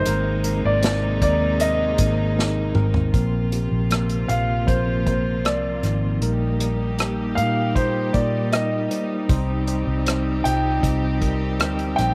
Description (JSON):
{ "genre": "pop ballad", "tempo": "78 BPM", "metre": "4/4", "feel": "straight", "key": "unclear", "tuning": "A4 = 439 Hz", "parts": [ { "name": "warm concert grand piano", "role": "melody", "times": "0.0-12.1 s", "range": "C5 to G5", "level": "-26 LUFS", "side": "equal", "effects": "slapback echo" }, { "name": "mellow tine electric piano", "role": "accompaniment", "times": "0.0-12.1 s", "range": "Ab2 to Eb5", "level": "-29 LUFS", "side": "equal", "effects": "none" }, { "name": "warm chamber string section", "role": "sustained chords", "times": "0.0-12.1 s", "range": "C3 to G4", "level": "-32 LUFS", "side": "equal", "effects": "none" }, { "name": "flamenco guitar", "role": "arpeggios", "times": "0.0-3.1 s", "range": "Ab3 to Bb4", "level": "-40 LUFS", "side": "equal", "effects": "none" }, { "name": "vintage muted fingered electric bass", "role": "bass", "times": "0.0-12.1 s", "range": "Ab1 to Bb2", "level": "-26 LUFS", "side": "equal", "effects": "none" }, { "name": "unplugged drum kit", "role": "drums", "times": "0.1-12.1 s", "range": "hi-hat, kick drum, rim click, snare drum, toms", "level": "-26 LUFS", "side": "equal", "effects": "none" } ], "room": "light reverb, small room ambience", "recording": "none", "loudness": "-21 LUFS", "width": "mono", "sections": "0.0-3.1 A section; 3.1-12.1 B section", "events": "drum fill 2.4-3.1", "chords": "0.1 Abadd9; 3.1 Bbsus2; 6.2 Eb/Bb; 9.3 Cm" }